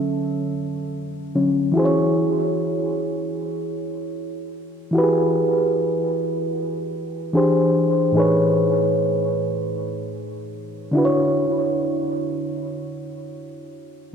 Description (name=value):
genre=R&B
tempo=free time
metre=none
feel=none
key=E mixolydian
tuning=A4 = 439 Hz
part: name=reed electric piano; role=solo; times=0.0-14.1 s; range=A2 to E5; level=-20 LUFS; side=equal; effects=diffuse ambient delay
room=wet lush hall reverb, RT60 2.9 s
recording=dreamy mix soaked in reverb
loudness=-19 LUFS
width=side -7 dB against mid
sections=0.0-1.7 A section; 1.7-14.1 B section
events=reed electric piano solo 0.0-1.7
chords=0.0 Dmaj7; 1.7 E6; 7.3 E7alt; 8.1 Amaj9#11; 10.9 Dmaj9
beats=free time